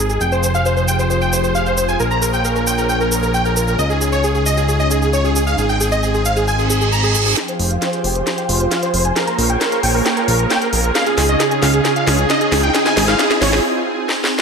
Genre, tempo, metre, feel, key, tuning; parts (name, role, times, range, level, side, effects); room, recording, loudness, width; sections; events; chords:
uplifting trance; 134 BPM; 4/4; straight; F minor; A4 = 440 Hz
supersaw chords; melody; 0.0-13.6 s; Ab4 to Bb5; -18 LUFS; right 1 dB; cassette tape, low-pass filter, ping-pong delay
wide unison pluck; second line; 0.0-7.3 s; Ab4 to Bb5; -24 LUFS; equal; ping-pong delay
analog string pad; sustained chords; 0.0-14.4 s; Db3 to Db5; -21 LUFS; equal; ensemble chorus
fat analog bass; bass; 0.0-13.6 s; F1 to Db2; -19 LUFS; equal
techno drum kit; drums; 0.1-14.4 s; hi-hat, shaker, snare drum; -21 LUFS; equal; overdrive, high-pass filter on perc, high-pass filter on snare, high-pass filter on hats
reverse cymbal and riser; sound effects; 6.6-13.6 s; -24 LUFS; right 1 dB
moderate digital room reverb, RT60 1.2 s; -14 LUFS; side -5 dB against mid
0.0-7.4 A section; 7.4-14.4 B section
reverse cymbal 6.6-7.4; build-up 7.4-14.4; drum fill 7.4-13.6, 14.1-14.4; filter sweep on supersaw synth 7.4-14.4; break 13.6-14.4
0.2 Fmadd9; 2.0 Bbm7; 3.8 Dbadd9; 5.6 Ab; 7.4 Fmadd9; 9.2 Bbm7; 11.0 Dbadd9; 12.7 Ab